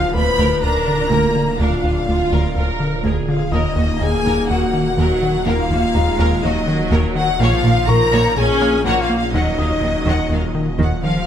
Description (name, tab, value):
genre	cinematic, hybrid orchestral and electronic film score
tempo	124 BPM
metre	4/4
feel	straight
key	Eb minor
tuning	A4 = 440 Hz
part	rich chamber violin section	second line	0.0-11.3 s	Eb5 to Cb6	-23 LUFS	left 2 dB	none
part	rich symphonic viola section	accompaniment	0.0-11.0 s	F3 to Bb4	-25 LUFS	right 2 dB	none
part	deep dark ambient pad	sustained chords	0.0-11.3 s	Bb2 to D5	-28 LUFS	equal	chorus, built-in reverb
part	mellow French horn section	sustained chords	0.0-10.8 s	Eb4 to Cb5	-22 LUFS	left 3 dB	none
part	rubbery square bass	riff	0.0-11.2 s	D2 to Bb3	-21 LUFS	left 1 dB	none
part	phased detuned saw bass	bass	0.0-11.3 s	D1 to Bb1	-26 LUFS	equal	phaser
part	clear baby grand piano	texture	0.0-11.3 s	Eb5 to F6	-33 LUFS	left 2 dB	digital delay
part	rich chamber cello section	bass	0.1-11.3 s	D2 to F3	-24 LUFS	right 3 dB	none
part	rich symphonic double bass section	bass	0.1-10.9 s	Bb1 to Eb2	-24 LUFS	right 3 dB	none
part	clear symphonic violin section	melody	0.2-11.3 s	D4 to Gb5	-29 LUFS	left 2 dB	none
room	light reverb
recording	close, detailed microphones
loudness	-15 LUFS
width	side -9 dB against mid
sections	0.0-11.3 A section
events	none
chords	0.0 Bb/D; 3.5 Ebm; 7.4 Bbm; 9.3 Ebmadd9